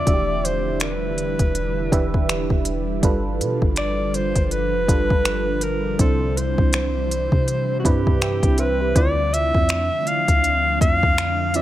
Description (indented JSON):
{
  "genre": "contemporary R&B",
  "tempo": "81 BPM",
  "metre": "4/4",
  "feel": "swing 58% on 16ths",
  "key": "D dorian",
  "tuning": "A4 = 440 Hz",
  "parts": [
    { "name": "warm alto saxophone", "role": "melody", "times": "0.0-11.6 s", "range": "F#4 to F5", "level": "-23 LUFS", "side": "equal", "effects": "none" },
    { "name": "FM electric piano with tremolo", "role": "accompaniment", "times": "0.0-11.6 s", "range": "C3 to G5", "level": "-26 LUFS", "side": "right 4 dB", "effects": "none" },
    { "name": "ethereal airy pad", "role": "sustained chords", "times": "0.0-11.6 s", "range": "C3 to F4", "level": "-29 LUFS", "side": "left 1 dB", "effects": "ensemble chorus, built-in reverb" },
    { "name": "soft 808-style bass", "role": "bass", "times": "0.0-11.6 s", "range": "E1 to C3", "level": "-25 LUFS", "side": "equal", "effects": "none" },
    { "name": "smooth R&B drum kit", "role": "drums", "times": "0.1-11.6 s", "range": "finger snaps, hi-hat, kick drum", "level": "-20 LUFS", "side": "equal", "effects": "none" }
  ],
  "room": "digital ambience",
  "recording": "none",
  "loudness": "-18 LUFS",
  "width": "side -13 dB against mid",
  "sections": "0.0-9.0 A section; 9.0-11.6 B section",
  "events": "none",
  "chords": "0.1 Em7; 3.0 G7; 6.0 Cmaj7; 9.0 Dm9"
}